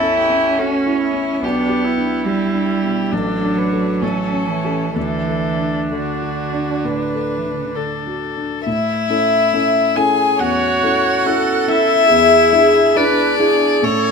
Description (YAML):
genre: classical, slow romantic movement for piano quartet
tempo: 62-72 BPM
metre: 4/4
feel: rubato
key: D major, A major from 8.7 s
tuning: A4 = 441 Hz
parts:
  - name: rich violin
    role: melody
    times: 0.0-14.1 s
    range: E4 to G#5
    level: -19 LUFS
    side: left 4 dB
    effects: none
  - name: warm cello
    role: second line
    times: 0.0-14.1 s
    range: C#3 to G#4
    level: -20 LUFS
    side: right 4 dB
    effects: none
  - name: dark grand piano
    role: accompaniment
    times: 0.0-14.1 s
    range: A1 to A4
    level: -22 LUFS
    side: left 3 dB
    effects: none
  - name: warm viola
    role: accompaniment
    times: 0.0-14.1 s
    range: C#4 to C#5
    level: -21 LUFS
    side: right 2 dB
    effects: none
room: moderate stone room reverb, RT60 1.5 s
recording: minimal, uncompressed stereo recording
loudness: -14 LUFS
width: side -5 dB against mid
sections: 0.0-8.7 A section; 8.7-14.1 B section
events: none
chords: 0.0 A; 1.4 G/B; 3.1 D/A; 4.0 A7; 5.0 D; 8.7 A; 12.1 E7